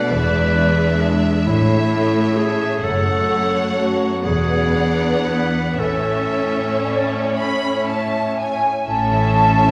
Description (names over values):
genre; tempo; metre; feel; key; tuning
classical; 37-45 BPM (dotted quarters); 6/8; rubato; A major; A4 = 439 Hz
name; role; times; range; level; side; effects
warm studio violin section; melody; 0.0-9.7 s; E5 to B5; -30 LUFS; equal; none
warm clarinet; second line; 0.0-7.4 s; D4 to B4; -24 LUFS; equal; none
warm studio violin section; second line; 0.0-9.7 s; C#4 to D5; -29 LUFS; equal; none
warm studio viola section; accompaniment; 0.0-9.7 s; G#3 to C#4; -26 LUFS; equal; none
concert harp; arpeggios; 0.0-9.7 s; E2 to F#5; -27 LUFS; equal; none
bright studio cello section; bass; 0.0-9.7 s; E2 to A2; -26 LUFS; equal; none
dark studio double bass section; bass; 0.1-9.7 s; E1 to A1; -27 LUFS; equal; none
large flute ensemble; second line; 6.8-9.7 s; D5 to A5; -22 LUFS; equal; none
mellow French horn section; sustained chords; 8.9-9.7 s; C#4 to E4; -29 LUFS; equal; none
room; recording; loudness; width
wet concert hall reverb, RT60 1.7 s; recorded in a church or concert hall; -18 LUFS; mono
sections
0.0-8.9 A section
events
none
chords
0.1 E7; 1.5 A; 2.8 F#m; 4.2 E9; 5.8 A